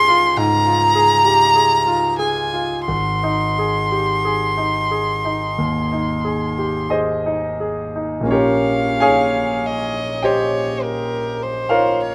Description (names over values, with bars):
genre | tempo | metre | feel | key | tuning
classical, impressionist duo for violin and grand piano | 42-53 BPM | 4/4 | rubato | Bb dorian | A4 = 443 Hz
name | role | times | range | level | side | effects
warm violin | melody | 0.0-12.1 s | Bb4 to C6 | -20 LUFS | equal | none
clear concert grand piano | accompaniment | 0.0-12.1 s | Ab1 to Ab5 | -21 LUFS | equal | none
room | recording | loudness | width
light reverb | none | -18 LUFS | mono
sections
0.0-8.3 A section; 8.3-12.1 B section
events
none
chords
0.0 Db; 2.9 Ab; 8.3 Bbm7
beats
0.37 1.55 | 2.87 4.24 5.57 6.92 | 8.32 9.66 10.83 11.99